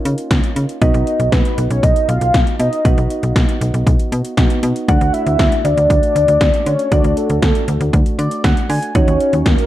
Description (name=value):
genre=synth-pop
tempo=118 BPM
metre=4/4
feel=straight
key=unclear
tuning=A4 = 441 Hz
part: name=soft electric-piano-like synth keys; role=accompaniment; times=0.0-9.7 s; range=A3 to G#5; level=-22 LUFS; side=right 2 dB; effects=chorus
part: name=slap-like FM bass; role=bass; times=0.1-9.6 s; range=B1 to D3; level=-17 LUFS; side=equal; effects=none
part: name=80s electronic pad drums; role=drums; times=0.1-9.7 s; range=hi-hat, kick drum, snare drum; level=-16 LUFS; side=equal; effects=overdrive
part: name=warm velvety synth lead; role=melody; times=0.8-9.7 s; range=A4 to F#5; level=-18 LUFS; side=equal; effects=chorus, tremolo, analog delay
room=light reverb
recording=dark, warm production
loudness=-13 LUFS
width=side -14 dB against mid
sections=0.0-9.7 A section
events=synth keys fill 7.9-9.0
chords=0.0 C#add9; 0.8 B; 4.9 D; 9.0 D#m7